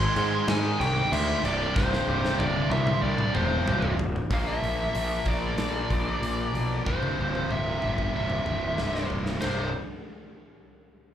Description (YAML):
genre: hard rock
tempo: 94 BPM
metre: 4/4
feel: straight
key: C mixolydian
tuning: A4 = 440 Hz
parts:
  - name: biting lead guitar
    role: melody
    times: 0.0-9.7 s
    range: C5 to C6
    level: -30 LUFS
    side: equal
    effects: overdrive, slapback echo
  - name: octave-fuzz lead guitar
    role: second line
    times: 0.0-3.9 s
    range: G4 to Ab5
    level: -37 LUFS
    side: right 3 dB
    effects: none
  - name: distorted electric guitar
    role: riff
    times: 0.0-9.7 s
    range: C2 to Bb3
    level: -33 LUFS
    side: right 10 dB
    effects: overdrive, slapback echo
  - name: tight distorted guitar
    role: riff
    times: 0.0-9.7 s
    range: C2 to Bb3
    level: -34 LUFS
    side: left 10 dB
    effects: distortion, slapback echo
  - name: fuzz picked electric bass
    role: bass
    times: 0.0-9.7 s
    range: C1 to Ab2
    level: -29 LUFS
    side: equal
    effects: overdrive
  - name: huge arena drum kit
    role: drums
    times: 0.2-9.6 s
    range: crash cymbal, hi-hat, kick drum, ride cymbal, snare drum, toms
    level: -31 LUFS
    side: equal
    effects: none
room: little or no reverb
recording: live gig heard through the venue's PA, club reverb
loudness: -24 LUFS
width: side -10 dB against mid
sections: 0.0-4.3 A section; 4.3-9.4 B section; 9.4-11.1 C section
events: drum fill 1.7-4.3, 6.9-9.4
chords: 0.0 Ab; 1.4 C5; 4.3 Bb; 6.9 C5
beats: 0.47 1.11 | 1.75 2.38 3.02 3.66 | 4.29 4.93 5.57 6.21 | 6.85 7.50 8.14 8.78 | 9.42